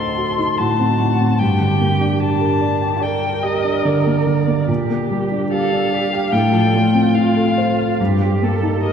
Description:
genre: classical, slow romantic movement for piano trio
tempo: 73 BPM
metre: 4/4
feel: rubato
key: G minor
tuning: A4 = 440 Hz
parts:
  - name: muted violin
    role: melody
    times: 0.0-8.9 s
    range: D5 to C6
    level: -22 LUFS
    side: left 5 dB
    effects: none
  - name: muted cello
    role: second line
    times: 0.0-8.9 s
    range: D4 to Bb4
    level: -24 LUFS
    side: right 4 dB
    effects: none
  - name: dark concert grand piano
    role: accompaniment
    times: 0.0-8.9 s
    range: D2 to G5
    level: -16 LUFS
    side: right 1 dB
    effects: none
room: wet church reverb, RT60 3.5 s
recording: dark, warm production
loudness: -15 LUFS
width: side -7 dB against mid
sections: 0.0-8.9 A section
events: none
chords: 0.0 D7b9; 1.4 Gm; 4.7 Gm/Bb; 6.3 F/A; 8.0 Eb/G

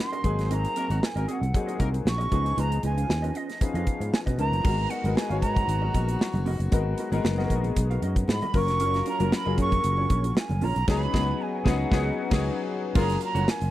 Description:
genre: polished 1980s jazz-funk pop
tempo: 116 BPM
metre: 4/4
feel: swing 54% on 16ths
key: unclear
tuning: A4 = 443 Hz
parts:
  - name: breathy mellow silver concert flute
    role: melody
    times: 0.0-13.7 s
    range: D#5 to C#6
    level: -30 LUFS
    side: right 3 dB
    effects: slapback echo
  - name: clear grand piano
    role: accompaniment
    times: 0.0-13.7 s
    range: E#3 to C#5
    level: -31 LUFS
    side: left 5 dB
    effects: analog chorus
  - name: mellow electric guitar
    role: riff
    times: 0.0-13.7 s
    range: B3 to E#5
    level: -36 LUFS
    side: right 5 dB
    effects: ensemble chorus
  - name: modern studio drum kit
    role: drums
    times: 0.1-13.7 s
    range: crash cymbal, hi-hat, kick drum, snare drum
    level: -26 LUFS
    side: equal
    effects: none
  - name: sustaining fretless electric bass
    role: bass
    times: 0.2-13.7 s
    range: E#1 to B2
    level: -26 LUFS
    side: equal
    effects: none
  - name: mellow horn section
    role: second line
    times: 0.8-13.4 s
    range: C#3 to A#4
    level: -36 LUFS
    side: left 5 dB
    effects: none
  - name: congas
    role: percussion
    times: 4.8-13.5 s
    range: none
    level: -37 LUFS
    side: right 2 dB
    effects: none
room: little or no reverb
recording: dry, close 1970s-style studio recording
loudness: -23 LUFS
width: side -14 dB against mid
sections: 0.0-4.7 A section; 4.7-13.0 B section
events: band accent 10.9-13.0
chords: 0.2 G#9; 2.3 C#9; 4.7 G#m9; 10.9 C#9sus4; 13.0 F#maj7

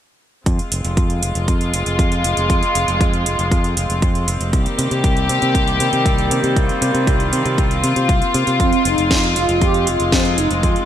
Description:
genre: italo disco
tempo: 118 BPM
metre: 4/4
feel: straight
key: F minor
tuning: A4 = 440 Hz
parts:
  - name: dark studio string section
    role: sustained chords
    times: 0.5-10.9 s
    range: Eb3 to G4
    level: -19 LUFS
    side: left 1 dB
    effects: none
  - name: modern bright fingered electric bass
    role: bass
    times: 0.5-10.7 s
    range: F1 to C3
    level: -20 LUFS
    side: equal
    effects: tube saturation
  - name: electronic kick drum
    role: drums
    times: 0.5-10.7 s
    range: none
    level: -18 LUFS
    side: equal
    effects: none
  - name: house drum kit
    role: drums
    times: 0.5-10.9 s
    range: hi-hat, snare drum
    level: -24 LUFS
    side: right 2 dB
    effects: none
  - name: mellow synth brass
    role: melody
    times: 8.6-10.9 s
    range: C4 to G4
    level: -19 LUFS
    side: right 2 dB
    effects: chorus, digital delay
room: moderate plate reverb, RT60 1.9 s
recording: bright 1980s-style digital production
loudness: -15 LUFS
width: side -10 dB against mid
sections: 0.5-10.9 A section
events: none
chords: 0.5 Fm; 4.5 Cm7; 8.6 Fm

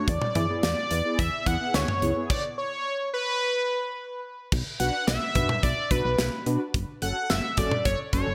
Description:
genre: synth-pop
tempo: 108 BPM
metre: 4/4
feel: straight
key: unclear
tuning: A4 = 440 Hz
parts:
  - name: octave-doubled lead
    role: melody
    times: 0.0-8.3 s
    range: B4 to F#5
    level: -30 LUFS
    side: equal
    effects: chorus, phaser, digital delay
  - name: mellow synth brass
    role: accompaniment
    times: 0.0-8.3 s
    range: B3 to B4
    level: -35 LUFS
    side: equal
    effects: chorus
  - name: solid FM bass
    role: bass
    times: 0.1-8.3 s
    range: F#1 to E3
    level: -31 LUFS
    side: equal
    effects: none
  - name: modern studio drum kit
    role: drums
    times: 0.1-8.3 s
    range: crash cymbal, hi-hat, kick drum, snare drum, toms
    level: -30 LUFS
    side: equal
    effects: gated reverb
room: moderate lush hall reverb, RT60 1.7 s, small room ambience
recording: bright 1980s-style digital production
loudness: -26 LUFS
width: mono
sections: 0.0-4.5 A section; 4.5-8.3 B section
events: stop 2.3-4.5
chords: 0.1 E; 4.5 Bm; 6.7 F#m

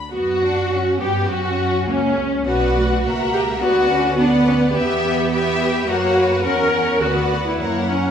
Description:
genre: quick classical-period movement for string orchestra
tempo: 104 BPM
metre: 2/4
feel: straight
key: B minor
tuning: A4 = 440 Hz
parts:
  - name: warm studio violin section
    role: melody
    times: 0.0-8.1 s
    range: C#4 to B5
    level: -25 LUFS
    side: left 6 dB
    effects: none
  - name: warm studio violin section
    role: second line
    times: 0.1-8.1 s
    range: C#4 to E5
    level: -25 LUFS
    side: left 2 dB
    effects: none
  - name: rich studio viola section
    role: accompaniment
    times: 0.1-8.1 s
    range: B3 to A#4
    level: -19 LUFS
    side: equal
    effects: none
  - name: rich studio double bass section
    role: bass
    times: 0.1-8.1 s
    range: B1 to G2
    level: -25 LUFS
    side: right 2 dB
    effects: none
  - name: warm studio cello section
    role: bass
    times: 0.1-8.1 s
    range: A3 to D4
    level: -26 LUFS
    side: right 3 dB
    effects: none
room: wet recital hall reverb, RT60 1.6 s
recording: recorded in a church or concert hall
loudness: -16 LUFS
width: side -8 dB against mid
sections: 0.1-8.1 A section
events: none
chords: 0.1 Bm/F#; 0.7 Gmaj7#11/F#; 1.3 F#; 2.5 Bm; 3.0 F#7/C#; 3.6 Bm/D; 4.7 Em; 5.9 F#; 6.4 F#7/E; 7.0 Bm/D

